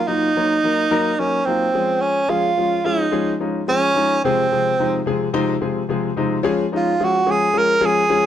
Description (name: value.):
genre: soul.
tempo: 108 BPM.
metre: 4/4.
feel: straight.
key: Db major.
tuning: A4 = 440 Hz.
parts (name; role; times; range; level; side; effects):
breathy tenor saxophone; melody; 0.0-8.3 s; C4 to Bb4; -17 LUFS; right 2 dB; none.
warm grand piano; accompaniment; 0.1-8.3 s; C3 to Db5; -21 LUFS; left 4 dB; none.
room: moderate studio reverb, RT60 0.5 s.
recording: dark, warm production.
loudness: -16 LUFS.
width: side -10 dB against mid.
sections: 0.0-6.5 A section; 6.5-8.3 B section.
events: none.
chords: 0.0 Ebm; 1.7 Db; 4.2 Fm/C; 6.5 Db.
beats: 0.36 0.91 1.47 | 2.02 2.57 3.13 3.68 | 4.24 4.79 5.34 5.90 | 6.45 7.00 7.56 8.11.